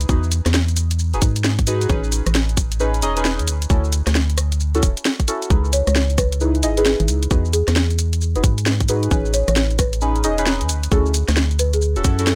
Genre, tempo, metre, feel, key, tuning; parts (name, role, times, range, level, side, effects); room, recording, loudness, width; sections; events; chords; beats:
UK garage, two-step garage; 133 BPM; 4/4; swing 64% on 16ths; A4 = 441 Hz
deep mellow chord stab; stabs; 0.0-12.4 s; C#4 to D#5; -26 LUFS; equal; chorus, phaser, dub echo
organ-like FM bass; bass; 0.0-12.4 s; D1 to G#2; -22 LUFS; equal; sidechain pumping
garage drum kit; drums; 0.0-12.4 s; hi-hat, rim click, shaker, snare drum; -24 LUFS; equal; overdrive
electronic kick drum; drums; 0.1-12.2 s; -20 LUFS; equal; overdrive
folk marimba with soft mallets; melody; 5.7-12.2 s; G#4 to C#5; -27 LUFS; equal; dub echo
light reverb; -19 LUFS; mono
0.0-12.4 A section
0.1 Emaj9; 1.9 Amaj9#11; 3.5 Dmaj7; 5.5 C#m9; 7.3 Emaj9; 9.1 Amaj9#11; 10.7 Dmaj7
| 0.09 0.54 0.99 1.44 | 1.90 2.35 2.80 3.25 | 3.70 4.15 4.60 5.05 | 5.50 5.96 6.41 6.86 | 7.31 7.76 8.21 8.66 | 9.11 9.56 10.02 10.47 | 10.92 11.37 11.82 12.27